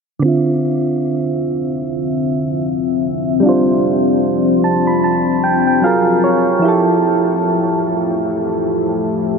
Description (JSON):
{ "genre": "R&B", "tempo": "75 BPM", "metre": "4/4", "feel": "swing 58% on 16ths", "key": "D minor", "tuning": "A4 = 441 Hz", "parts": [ { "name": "soft electric-piano-like synth keys", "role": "accompaniment", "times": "0.2-9.4 s", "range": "D3 to B5", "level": "-15 LUFS", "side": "right 2 dB", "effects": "chorus, low-pass filter" }, { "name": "deep dark ambient pad", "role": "sustained chords", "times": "1.3-9.4 s", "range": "D3 to E5", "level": "-18 LUFS", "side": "left 5 dB", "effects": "chorus, built-in reverb, low-pass filter" } ], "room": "wet huge ambient reverb, RT60 7.0 s", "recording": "dreamy mix soaked in reverb", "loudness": "-13 LUFS", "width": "side -5 dB against mid", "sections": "0.2-9.4 A section", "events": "synth keys fill 4.2-6.6", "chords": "0.2 Dm9; 3.4 G7sus4; 5.8 F#maj9; 6.6 Fmaj9" }